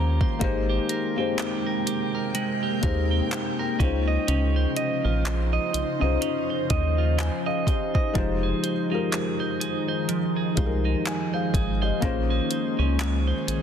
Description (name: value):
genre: contemporary R&B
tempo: 62 BPM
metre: 4/4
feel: swing 58% on 16ths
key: F minor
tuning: A4 = 440 Hz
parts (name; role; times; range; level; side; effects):
- felt-muted upright piano; accompaniment; 0.0-13.6 s; Ab3 to Bb5; -29 LUFS; left 6 dB; none
- ethereal airy pad; sustained chords; 0.0-13.6 s; C3 to G5; -31 LUFS; equal; ensemble chorus, built-in reverb, phaser
- clean electric guitar; arpeggios; 0.0-13.6 s; Eb3 to Eb5; -29 LUFS; right 6 dB; ping-pong delay
- rubbery square bass; bass; 0.0-13.6 s; F1 to Eb2; -24 LUFS; equal; none
- smooth R&B drum kit; drums; 0.2-13.6 s; handclaps, hi-hat, kick drum; -28 LUFS; equal; none
room: light reverb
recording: dense, heavily limited modern master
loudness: -22 LUFS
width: side -8 dB against mid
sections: 0.0-13.6 A section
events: felt piano fill 0.0-0.4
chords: 0.4 Abmaj9; 3.8 Dbmaj9; 8.2 Fm7; 12.0 Bbm9